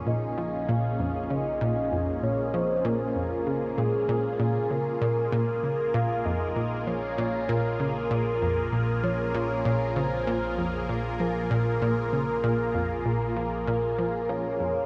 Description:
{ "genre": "ambient, sequencer-driven space music", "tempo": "97 BPM", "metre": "4/4", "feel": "straight", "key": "Bb minor", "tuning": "A4 = 439 Hz", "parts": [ { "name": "lush unison pad", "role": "sustained chords", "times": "0.0-14.9 s", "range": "Bb3 to Bb4", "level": "-34 LUFS", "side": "equal", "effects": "chorus, phaser" }, { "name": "fat analog bass", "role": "bass", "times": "0.0-14.9 s", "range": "Bb1", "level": "-42 LUFS", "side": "equal", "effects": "none" }, { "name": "soft octave-layered synth lead", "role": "melody", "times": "0.1-14.9 s", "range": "Ab4 to F5", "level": "-32 LUFS", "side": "equal", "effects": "chorus, phaser, analog delay" }, { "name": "analog pluck", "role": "riff", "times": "0.1-14.7 s", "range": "F2 to F3", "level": "-31 LUFS", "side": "equal", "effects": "chorus, analog delay" } ], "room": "wet cathedral reverb, RT60 5.7 s", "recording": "in a vast, echoing space, cassette tape", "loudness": "-27 LUFS", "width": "mono", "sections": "0.0-14.9 A section", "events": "fade-in on analog synth bass 0.0-14.9", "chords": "0.0 Bbm7", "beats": "| 0.07 0.69 1.30 1.92 | 2.54 3.16 3.78 4.40 | 5.01 5.63 6.25 6.87 | 7.49 8.11 8.73 9.35 | 9.96 10.58 11.20 11.82 | 12.44 13.06 13.68 14.29" }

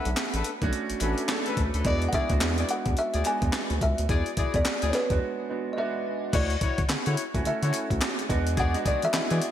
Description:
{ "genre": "R&B, new jack swing", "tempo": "107 BPM", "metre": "4/4", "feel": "swing 61% on 16ths", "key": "unclear", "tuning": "A4 = 441 Hz", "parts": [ { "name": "kalimba", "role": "melody", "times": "0.0-9.5 s", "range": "B4 to G#5", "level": "-31 LUFS", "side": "equal", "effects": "ping-pong delay" }, { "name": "warm baby grand piano", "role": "accompaniment", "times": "0.0-9.5 s", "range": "G#3 to A4", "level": "-32 LUFS", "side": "right 4 dB", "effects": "lush chorus" }, { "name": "mellow horn section", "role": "stabs", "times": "0.0-9.5 s", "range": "D4 to D5", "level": "-33 LUFS", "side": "left 6 dB", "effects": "none" }, { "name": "round analog bass", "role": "bass", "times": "0.1-9.4 s", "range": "A1 to E3", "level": "-28 LUFS", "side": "equal", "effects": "none" }, { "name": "breakbeat sampler-style drum kit", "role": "drums", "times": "0.1-9.5 s", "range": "crash cymbal, handclaps, hi-hat, kick drum, snare drum", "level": "-28 LUFS", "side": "equal", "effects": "gated reverb" }, { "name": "group handclap", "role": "percussion", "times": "0.2-9.3 s", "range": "none", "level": "-41 LUFS", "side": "left 6 dB", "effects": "none" } ], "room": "light reverb, small room ambience", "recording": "bright 1980s-style digital production", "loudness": "-24 LUFS", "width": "side -10 dB against mid", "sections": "0.0-6.3 A section; 6.3-9.5 B section", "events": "break 5.2-6.3", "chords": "0.0 Bm7; 1.8 E7; 6.3 Dmaj9; 8.3 E9", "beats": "0.17 0.73 1.29 | 1.85 2.41 2.97 3.53 | 4.09 4.65 5.21 5.77 | 6.33 6.89 7.46 8.02 | 8.58 9.14" }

